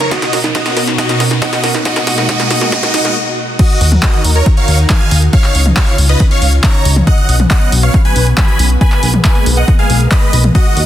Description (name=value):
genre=uplifting trance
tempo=138 BPM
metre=4/4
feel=straight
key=unclear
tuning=A4 = 440 Hz
part: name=big supersaw lead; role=melody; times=0.0-10.8 s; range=F#4 to B5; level=-17 LUFS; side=right 1 dB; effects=phaser, sidechain pumping, ping-pong delay
part: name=analog string pad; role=sustained chords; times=0.0-10.9 s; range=B2 to Bb4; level=-20 LUFS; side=equal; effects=ensemble chorus, sidechain pumping
part: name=wide unison pluck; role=arpeggios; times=0.0-3.1 s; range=Eb4 to Bb4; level=-22 LUFS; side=right 5 dB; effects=sidechain pumping, dub echo
part: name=punchy analog drum machine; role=drums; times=0.0-10.9 s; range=crash cymbal, handclaps, hi-hat, snare drum, toms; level=-18 LUFS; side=equal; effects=overdrive, high-pass filter on snare, sidechain pumping on hats, high-pass filter on hats, sidechain pumping on toms, high-pass filter on toms, sidechain pumping on cymbals, high-pass filter on cymbals
part: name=riser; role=sound effects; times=0.0-3.2 s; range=none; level=-20 LUFS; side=equal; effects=none
part: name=electronic kick drum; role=drums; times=0.1-10.6 s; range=none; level=-11 LUFS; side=equal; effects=overdrive, high-pass filter on kick
part: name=plucky analog bass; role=bass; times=3.8-10.9 s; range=B1 to Eb2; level=-11 LUFS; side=equal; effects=sidechain pumping
room=little or no reverb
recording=dense, heavily limited modern master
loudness=-9 LUFS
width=side -12 dB against mid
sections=0.0-3.6 A section; 3.6-10.9 B section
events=build-up 0.0-3.6; drum fill 0.0-3.2; riser 0.0-3.2; stop 3.2-3.6; drop 3.6-10.9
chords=0.1 Bsus2; 1.9 Abmadd9/Cb; 3.6 Ebm; 5.3 Dbadd9; 7.1 Bsus2; 8.8 Abmadd9/Cb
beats=| 0.11 0.55 0.98 1.42 | 1.85 2.29 2.72 3.16 | 3.59 4.03 4.46 4.90 | 5.33 5.77 6.20 6.64 | 7.07 7.51 7.94 8.38 | 8.81 9.24 9.68 10.11 | 10.55